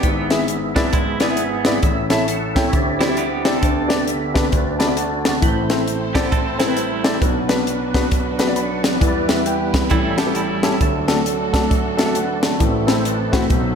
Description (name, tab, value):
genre	uptempo gospel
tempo	134 BPM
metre	4/4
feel	swing 62% on 8ths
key	unclear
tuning	A4 = 440 Hz
part	semi-hollow electric guitar	second line	0.0-7.2, 9.9-10.8 s	F#3 to A4	-26 LUFS	right 6 dB	tremolo, slapback echo
part	dark concert grand piano	accompaniment	0.0-13.8 s	G#1 to B5	-21 LUFS	left 3 dB	slapback echo
part	percussive tonewheel organ	sustained chords	0.0-13.8 s	G#2 to A5	-24 LUFS	right 2 dB	slow rotary speaker, chorus vibrato
part	crisp fusion drum kit	drums	0.0-13.6 s	hi-hat, kick drum, snare drum	-20 LUFS	equal	none
part	clear studio string section	sustained chords	5.4-13.8 s	A3 to C5	-30 LUFS	right 1 dB	none
room	wet recital hall reverb, RT60 1.5 s, studio ambience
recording	big arena sound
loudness	-16 LUFS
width	side -6 dB against mid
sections	0.0-13.8 A section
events	grand piano fill 4.5-5.4, 11.7-12.6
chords	0.0 E/G#; 1.8 A; 2.7 D9sus4; 3.6 G/D; 4.5 D; 5.4 Am; 7.2 Bm; 9.0 Em; 9.9 A7; 10.8 D; 12.6 Am